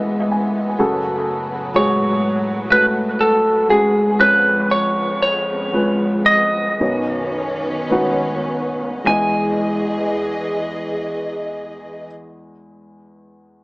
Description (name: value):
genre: pop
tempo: 51-63 BPM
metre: 4/4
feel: straight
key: E major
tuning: A4 = 440 Hz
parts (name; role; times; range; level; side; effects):
- dark upright piano; accompaniment; 0.0-13.6 s; B1 to G#5; -20 LUFS; equal; dub echo
- warm studio string section; sustained chords; 0.0-12.1 s; E2 to D#5; -25 LUFS; equal; none
- lightly driven lead guitar; melody; 1.8-12.1 s; G#4 to G#5; -16 LUFS; equal; dub echo
room: moderate spring reverb, RT60 1.3 s, small room ambience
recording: echo-heavy mix, small speaker sound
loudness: -16 LUFS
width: side -24 dB against mid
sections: 0.0-9.1 A section; 9.1-13.6 B section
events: upright piano fill 0.0-0.8; slowing down 0.8-9.1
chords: 0.0 Emaj7; 0.8 F#madd9; 4.2 C#/E#; 6.8 Badd9; 9.1 Emaj7